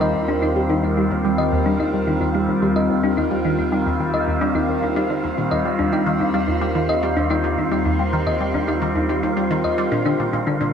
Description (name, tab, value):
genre	ambient, sequencer-driven space music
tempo	109 BPM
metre	4/4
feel	straight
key	Eb major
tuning	A4 = 441 Hz
part	evolving wavetable pad	sustained chords	0.0-10.7 s	D3 to Bb4	-22 LUFS	equal	phaser, built-in reverb
part	thumb-piano-like synth pluck	arpeggios	0.0-10.7 s	Eb3 to Eb5	-24 LUFS	left 3 dB	chorus, auto-pan, ping-pong delay
part	resonant blip pluck	riff	0.0-10.7 s	Eb2 to G3	-24 LUFS	equal	phaser, wide subtle chorus, ping-pong delay
part	round analog bass	bass	0.0-10.7 s	Bb1 to Eb2	-29 LUFS	equal	none
part	wind-like tuned noise texture	texture	0.0-10.7 s	F4 to F5	-27 LUFS	right 1 dB	built-in reverb
room	moderate plate reverb, RT60 2.5 s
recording	none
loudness	-18 LUFS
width	side -7 dB against mid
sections	0.0-10.7 A section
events	none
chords	0.0 Eb; 9.9 Bb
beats	0.01 0.56 | 1.11 1.66 2.21 2.76 | 3.31 3.86 4.41 4.96 | 5.51 6.06 6.62 7.17 | 7.72 8.27 8.82 9.37 | 9.92 10.47